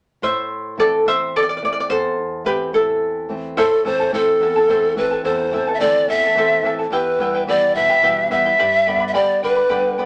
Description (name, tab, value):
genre	andean folk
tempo	72 BPM (dotted quarters)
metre	6/8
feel	straight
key	unclear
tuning	A4 = 440 Hz
part	charango	accompaniment	0.2-10.1 s	E4 to B5	-23 LUFS	equal	none
part	flamenco guitar	accompaniment	0.2-10.1 s	E2 to C4	-30 LUFS	equal	none
part	breathy polished pan flute	melody	3.6-10.0 s	A4 to E5	-18 LUFS	equal	none
room	moderate studio ambience, RT60 0.5 s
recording	none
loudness	-18 LUFS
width	mono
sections	0.2-3.6 A section; 3.6-10.1 B section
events	charango solo 0.2-3.6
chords	0.2 Am; 6.9 Em; 8.6 G